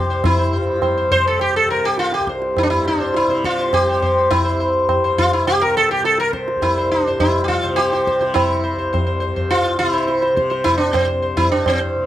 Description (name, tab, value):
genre	indian classical, Hindustani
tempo	104 BPM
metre	7/4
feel	straight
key	C raga khamaj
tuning	A4 = 439 Hz
part	sitar	melody	0.0-12.1 s	C4 to C5	-16 LUFS	equal	none
part	tanpura	drone	0.0-12.1 s	C2 to C3	-27 LUFS	left 2 dB	none
part	tabla	percussion	0.2-11.9 s	none	-22 LUFS	right 1 dB	none
room	little or no reverb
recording	close, detailed microphones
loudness	-15 LUFS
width	side -12 dB against mid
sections	0.0-12.1 A section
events	none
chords	none